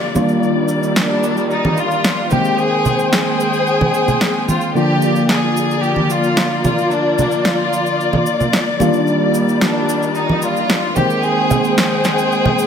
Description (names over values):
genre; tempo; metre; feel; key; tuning
nu-disco, nu disco; 111 BPM; 4/4; straight; Bb mixolydian; A4 = 440 Hz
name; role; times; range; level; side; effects
clear chamber violin section; melody; 0.0-12.7 s; D4 to Ab4; -20 LUFS; equal; tape echo
bright tine electric piano; accompaniment; 0.0-12.7 s; D3 to G5; -19 LUFS; equal; phaser, digital delay
dark chamber string section; sustained chords; 0.0-12.7 s; Eb3 to G5; -20 LUFS; left 3 dB; low-pass filter
cabasa and congas; percussion; 0.2-12.7 s; none; -21 LUFS; right 2 dB; none
electronic snare drum; drums; 1.0-12.2 s; none; -19 LUFS; equal; studio ambience
room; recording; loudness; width
moderate lush hall reverb, RT60 2.3 s; none; -14 LUFS; side -7 dB against mid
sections
0.0-12.7 A section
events
none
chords
0.2 Ebmaj7; 2.3 Abmaj7; 4.8 Bb; 8.8 Ebmaj7; 11.0 Abmaj7